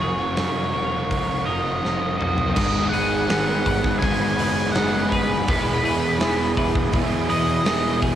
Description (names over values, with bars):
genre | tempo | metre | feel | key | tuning
rock, shoegaze and dream pop | 82 BPM | 4/4 | straight | G# minor | A4 = 439 Hz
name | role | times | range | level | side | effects
octave-fuzz lead guitar | melody | 0.0-8.0 s | B4 to G#5 | -26 LUFS | equal | distortion, analog delay
warm analog pad | sustained chords | 0.0-8.2 s | E4 to D#6 | -32 LUFS | equal | chorus, cassette tape
twelve-string electric guitar | arpeggios | 0.0-8.2 s | F#4 to B4 | -32 LUFS | left 2 dB | lush chorus, cassette tape, analog delay
overdriven semi-hollow guitar | riff | 0.0-8.2 s | E2 to G#4 | -26 LUFS | right 8 dB | reverse reverb, cassette tape
thick fuzz guitar | riff | 0.0-8.2 s | E2 to G#3 | -26 LUFS | left 6 dB | distortion, wide subtle chorus, cassette tape
fuzz picked electric bass | bass | 0.0-8.2 s | E1 to F#2 | -28 LUFS | equal | overdrive
huge arena drum kit | drums | 0.4-8.2 s | crash cymbal, hi-hat, kick drum, snare drum, toms | -26 LUFS | equal | cassette tape
room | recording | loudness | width
small room ambience | home recording on cassette | -19 LUFS | side -11 dB against mid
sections
0.0-2.6 A section; 2.6-8.2 B section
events
drum fill 1.8-2.6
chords
0.0 F#7; 2.6 G#m7; 5.5 Emaj7